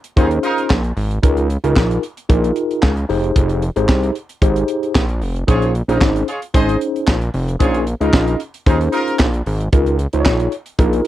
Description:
early-eighties boogie funk; 113 BPM; 4/4; straight; Bb dorian; A4 = 445 Hz
tight funk drum kit; drums; 0.0-11.1 s; handclaps, hi-hat, kick drum, snare drum; -16 LUFS; equal
warm horn section; second line; 0.2-0.6, 5.5-9.1 s; Eb4 to Eb5; -22 LUFS; right 2 dB
mellow tine electric piano; accompaniment; 0.2-11.1 s; Db4 to Eb5; -19 LUFS; left 1 dB; medium stereo tremolo
fat analog bass; bass; 0.2-11.0 s; F1 to Eb2; -18 LUFS; equal
little or no reverb; dry, close 1970s-style studio recording; -14 LUFS; side -13 dB against mid
0.0-11.1 A section
0.0 Bbm11; 1.2 Db69; 3.1 Fm9; 5.5 Bbm11; 9.7 Db69

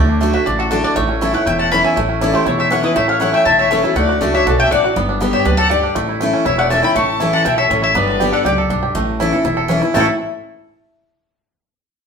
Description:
bluegrass; 240 BPM; 4/4; straight; A mixolydian; A4 = 441 Hz
bluegrass banjo; melody; 0.0-10.1 s; A3 to A4; -20 LUFS; right 4 dB
mandolin; melody; 0.0-10.1 s; F#4 to C#6; -18 LUFS; left 1 dB
picked steel-string acoustic guitar; accompaniment; 0.0-10.1 s; E2 to G4; -19 LUFS; left 1 dB
upright bass; bass; 0.0-10.1 s; E1 to D2; -21 LUFS; equal
warm fiddle; second line; 1.5-10.1 s; E4 to A5; -20 LUFS; left 5 dB
wet large studio reverb, RT60 0.9 s; band playing live in one room; -13 LUFS; side -6 dB against mid
0.0-9.9 A section
0.0 D; 1.0 A; 4.0 D; 5.0 G; 6.0 A; 8.0 G; 9.0 A

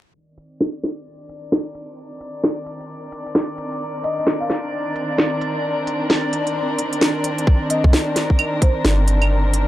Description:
future garage; 131 BPM; 4/4; swing 62% on 16ths; C minor; A4 = 440 Hz
dark studio string section; sustained chords; 0.1-9.7 s; Eb3 to Bb4; -24 LUFS; equal; sidechain pumping
drifting glass-harmonics texture; texture; 1.3-9.7 s; Bb4 to D5; -30 LUFS; equal; chorus, built-in reverb
organic electronic drum kit; drums; 0.4-9.6 s; claves, hi-hat, snare drum; -19 LUFS; equal; overdrive
folk marimba with soft mallets; melody; 4.0-9.3 s; C5 to F5; -28 LUFS; left 2 dB; vintage 12-bit sampler grit, analog delay
electronic kick drum; drums; 7.5-8.7 s; -15 LUFS; equal; overdrive
soft 808-style bass; bass; 7.8-9.7 s; G1 to C2; -16 LUFS; equal; transformer saturation, sidechain pumping
little or no reverb; dry, gritty hardware recording, transformer saturation, vinyl crackle, low-pass filter; -18 LUFS; side -14 dB against mid
0.1-7.5 A section; 7.5-9.7 B section
fade-in on string section 0.1-7.5; filter sweep 0.1-7.5
0.1 Cm9

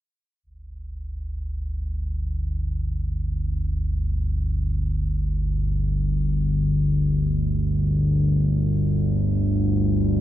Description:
ambient; free time; A4 = 441 Hz
analog drone; solo; 0.7-10.2 s; G1 to D2; -21 LUFS; equal; chorus
wet huge ambient reverb, RT60 7.9 s; dark, warm production; -21 LUFS; side -13 dB against mid
0.4-10.2 A section
0.4 G5

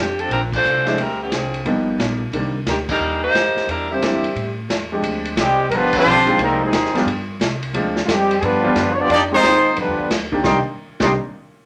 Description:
jazz, big band swing; 178 BPM; 4/4; swing 65% on 8ths; C minor; A4 = 442 Hz
warm saxophone section; melody; 0.0-4.5 s; Eb3 to C5; -22 LUFS; equal
upright bass; bass; 0.0-11.1 s; G1 to A2; -31 LUFS; equal
vintage drum kit; drums; 0.2-11.1 s; crash cymbal, hi-hat, kick drum, ride cymbal, snare drum; -27 LUFS; equal
clear upright piano; accompaniment; 0.9-11.1 s; Eb3 to G4; -25 LUFS; equal
warm trombone section; second line; 3.9-11.1 s; C3 to Eb4; -24 LUFS; equal
warm trumpet section; melody; 5.4-11.1 s; G3 to C6; -19 LUFS; equal
wet club reverb, RT60 0.6 s; -19 LUFS; mono
0.0-5.0 A section; 5.0-10.4 B section; 10.4-11.7 C section
band accent 0.5, 2.8, 5.9
0.0 Bbmaj9; 1.0 Dm7b5; 1.7 G7alt; 2.3 Cm9; 3.7 Em7b5; 4.4 A5; 5.0 Dm7b5; 5.7 G7; 6.4 Fm7; 7.1 C5; 7.7 Dm7b5; 8.4 G7; 9.1 Fm7; 9.8 G7; 10.4 Cm9

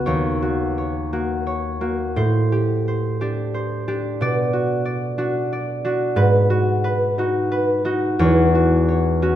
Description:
classical, solo harp piece; 59 BPM (dotted quarters); 6/8; uneven beats, rubato; A4 = 439 Hz
concert harp; solo; 0.0-9.4 s; D#2 to D#5; -18 LUFS; equal
moderate scoring stage reverb, RT60 1.8 s; dark, warm production; -18 LUFS; side -11 dB against mid
0.0-9.4 A section
0.1 D#m7; 2.2 Am7; 4.2 Bm; 6.2 G#m7; 8.2 Esus2

